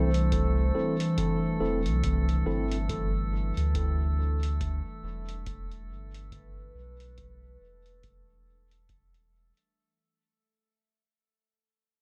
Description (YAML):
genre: ambient dub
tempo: 70 BPM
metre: 4/4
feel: swing 59% on 16ths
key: unclear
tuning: A4 = 440 Hz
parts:
  - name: warbly tape-like pad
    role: sustained chords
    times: 0.0-9.7 s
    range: E3 to C5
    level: -34 LUFS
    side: equal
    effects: chorus, built-in reverb
  - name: tine electric piano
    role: stabs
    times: 0.0-2.8 s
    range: C4 to A4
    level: -37 LUFS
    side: equal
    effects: dub echo
  - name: warm sub bass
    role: bass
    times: 0.0-9.5 s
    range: E1 to D2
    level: -31 LUFS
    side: equal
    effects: none
  - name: drifting glass-harmonics texture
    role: texture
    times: 0.0-9.8 s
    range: A3 to A4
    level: -41 LUFS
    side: equal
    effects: chorus, built-in reverb
  - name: electronic hi-hat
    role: drums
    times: 0.1-9.7 s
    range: none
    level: -46 LUFS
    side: equal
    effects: overdrive, dub echo
  - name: electronic kick drum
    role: drums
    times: 0.3-9.1 s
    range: none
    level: -39 LUFS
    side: equal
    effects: none
room: light reverb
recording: echo-heavy mix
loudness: -28 LUFS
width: mono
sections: 0.0-9.7 A section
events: fade-out 0.0-9.7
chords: 0.0 Am; 2.9 G6